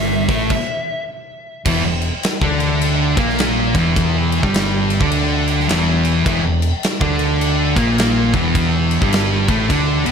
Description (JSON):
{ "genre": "stoner and doom metal", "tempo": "104 BPM", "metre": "4/4", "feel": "swing 62% on 8ths", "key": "unclear", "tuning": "A4 = 439 Hz", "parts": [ { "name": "fuzz lead guitar", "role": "melody", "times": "0.0-1.0 s", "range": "E5", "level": "-25 LUFS", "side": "left 2 dB", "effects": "distortion, digital delay" }, { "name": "thick fuzz guitar", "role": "riff", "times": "0.0-10.1 s", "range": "E2 to D4", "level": "-21 LUFS", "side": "left 10 dB", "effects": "distortion" }, { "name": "thick fuzz guitar", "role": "riff", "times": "0.0-10.1 s", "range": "E2 to D4", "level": "-20 LUFS", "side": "right 10 dB", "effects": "distortion" }, { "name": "overdriven fingered electric bass", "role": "bass", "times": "0.0-10.1 s", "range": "E1 to D2", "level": "-21 LUFS", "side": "equal", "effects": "none" }, { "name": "big rock drum kit", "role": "drums", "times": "0.3-10.1 s", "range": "crash cymbal, hi-hat, kick drum, snare drum", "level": "-20 LUFS", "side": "equal", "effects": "none" }, { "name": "high-gain distorted guitar", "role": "riff", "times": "1.7-10.1 s", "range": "E2 to D4", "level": "-22 LUFS", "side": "left 1 dB", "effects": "distortion" } ], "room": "little or no reverb", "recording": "none", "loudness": "-14 LUFS", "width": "side -6 dB against mid", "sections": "0.0-1.7 A section; 1.7-10.1 B section", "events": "stop 0.5-1.7", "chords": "0.0 Em", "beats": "0.51 1.08 | 1.66 2.24 2.81 3.39 | 3.96 4.54 5.11 5.69 | 6.26 6.84 7.41 7.98 | 8.56 9.13 9.71" }